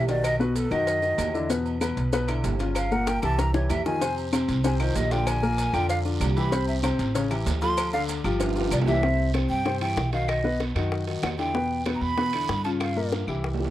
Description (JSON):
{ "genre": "Afro-Cuban jazz", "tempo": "191 BPM", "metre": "4/4", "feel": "straight", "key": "C major", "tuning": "A4 = 440 Hz", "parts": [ { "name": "breathy hollow jazz flute", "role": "melody", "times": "0.0-13.1 s", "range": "F#4 to C6", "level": "-28 LUFS", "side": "right 1 dB", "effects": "none" }, { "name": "warm upright piano", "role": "accompaniment", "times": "0.0-13.7 s", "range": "Bb2 to D5", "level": "-27 LUFS", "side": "left 3 dB", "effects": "none" }, { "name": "upright bass", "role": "bass", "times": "0.0-13.7 s", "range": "G1 to G2", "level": "-28 LUFS", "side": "right 1 dB", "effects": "none" }, { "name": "agogo bells and timbales", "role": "percussion", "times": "0.1-13.7 s", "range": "none", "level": "-35 LUFS", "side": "right 8 dB", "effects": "none" }, { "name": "cowbell and bongos", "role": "percussion", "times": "0.1-13.7 s", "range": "none", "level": "-34 LUFS", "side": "left 4 dB", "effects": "none" }, { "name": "maracas", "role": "percussion", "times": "0.1-9.0 s", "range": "none", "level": "-42 LUFS", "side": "right 8 dB", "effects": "none" }, { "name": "claves", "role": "percussion", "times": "0.2-13.4 s", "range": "none", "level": "-41 LUFS", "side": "left 3 dB", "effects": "none" }, { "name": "guiro", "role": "percussion", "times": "4.0-13.7 s", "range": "none", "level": "-41 LUFS", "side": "right 5 dB", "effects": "none" } ], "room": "little or no reverb", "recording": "dry, close 1970s-style studio recording", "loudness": "-23 LUFS", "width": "side -13 dB against mid", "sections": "0.0-9.0 A section; 9.0-13.7 B section", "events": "flute solo 0.0-9.0; drum fill 3.1-4.0, 8.4-9.0, 13.1-13.7", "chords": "0.2 B; 1.5 Em7; 2.8 Gm7b5; 3.4 C; 4.0 F7sus4; 5.3 Bb9; 6.5 Amadd9; 7.1 A7b13; 7.8 Dm; 8.4 Dm11/G (rootless); 9.0 Cmaj7; 10.3 B; 11.5 Em7; 12.8 Gm7b5" }